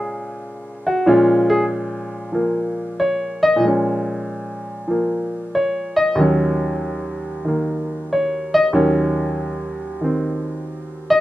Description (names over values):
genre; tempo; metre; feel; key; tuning
jazz; 94 BPM; 4/4; swing 67% on 8ths; Bb minor; A4 = 440 Hz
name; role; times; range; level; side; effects
warm upright piano; solo; 0.0-11.2 s; Eb2 to Eb5; -18 LUFS; equal; none
room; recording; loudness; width
light reverb; close, detailed microphones; -17 LUFS; side -15 dB against mid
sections
0.0-11.2 A section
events
upright piano solo 0.0-11.2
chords
0.0 Bbm7; 6.2 Ebm7